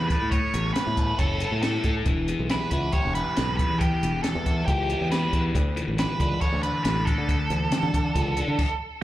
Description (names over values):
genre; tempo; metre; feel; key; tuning
indie rock; 138 BPM; 4/4; straight; unclear; A4 = 438 Hz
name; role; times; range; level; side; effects
octave-fuzz lead guitar; melody; 0.0-8.8 s; G4 to C#5; -29 LUFS; right 3 dB; distortion, slapback echo, digital delay
crunchy overdriven guitar; riff; 0.0-8.6 s; D3 to C#5; -29 LUFS; left 3 dB; phaser
modern bright fingered electric bass; bass; 0.0-8.6 s; E1 to D3; -27 LUFS; equal; none
compact cocktail drum kit; drums; 0.1-8.7 s; crash cymbal, hi-hat, kick drum, snare drum; -27 LUFS; equal; none
room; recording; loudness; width
little or no reverb; live gig heard through the venue's PA, club reverb; -22 LUFS; side -14 dB against mid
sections
0.0-9.0 A section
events
none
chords
0.0 Aadd9; 2.1 Em; 5.6 Dsus2